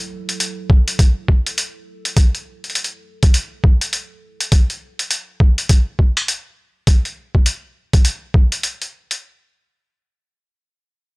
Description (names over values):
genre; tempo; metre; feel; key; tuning
glitch hop; 102 BPM; 4/4; swing 61% on 16ths; F# minor; A4 = 439 Hz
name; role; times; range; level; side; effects
warbly tape-like pad; sustained chords; 0.0-4.5 s; F#3 to A4; -38 LUFS; right 5 dB; chorus, built-in reverb, sidechain pumping
electronic hi-hat; drums; 0.3-9.2 s; none; -20 LUFS; equal; overdrive, small room reverb
electronic kick drum; drums; 0.7-8.5 s; none; -11 LUFS; equal; overdrive, small room reverb
room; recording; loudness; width
little or no reverb; dry, gritty hardware recording; -16 LUFS; side -29 dB against mid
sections
0.0-9.2 A section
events
none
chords
0.0 F#m7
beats
0.40 0.99 1.58 | 2.16 2.75 3.34 3.93 | 4.52 5.11 5.69 6.28 | 6.87 7.46 8.05 8.63